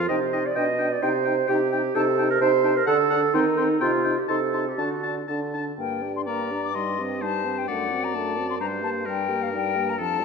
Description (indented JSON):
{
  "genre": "quick classical-period movement for wind quintet",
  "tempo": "129 BPM",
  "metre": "2/4",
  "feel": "rubato",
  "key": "G minor",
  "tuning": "A4 = 438 Hz",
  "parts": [
    { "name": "silver concert flute", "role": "melody", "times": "0.0-10.2 s", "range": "F5 to D6", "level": "-30 LUFS", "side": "left 11 dB", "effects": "none" },
    { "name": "clear oboe", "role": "second line", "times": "0.0-10.2 s", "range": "A4 to A5", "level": "-31 LUFS", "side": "left 4 dB", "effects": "none" },
    { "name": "mellow clarinet", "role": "accompaniment", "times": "0.0-10.2 s", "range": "D4 to Eb5", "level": "-25 LUFS", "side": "right 6 dB", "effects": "none" },
    { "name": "warm French horn", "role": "accompaniment", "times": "0.0-10.2 s", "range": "F3 to Eb4", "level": "-31 LUFS", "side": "left 1 dB", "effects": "none" },
    { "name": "dark bassoon", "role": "bass", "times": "0.0-10.2 s", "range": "F2 to Eb3", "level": "-28 LUFS", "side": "equal", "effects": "none" }
  ],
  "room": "moderate concert hall reverb, RT60 2.4 s",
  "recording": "none",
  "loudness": "-21 LUFS",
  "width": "side -5 dB against mid",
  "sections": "0.0-5.8 A section; 5.8-10.2 B section",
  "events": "none",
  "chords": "0.1 Cm; 0.6 G/B; 1.0 Cm; 2.0 Am7b5/C; 2.9 D; 3.3 Cm/Eb; 3.8 Cm; 4.3 Adim/C; 4.8 D; 5.8 Gm; 6.8 Cm/G; 7.7 D7/F#; 8.6 Gm; 9.5 Eb/G"
}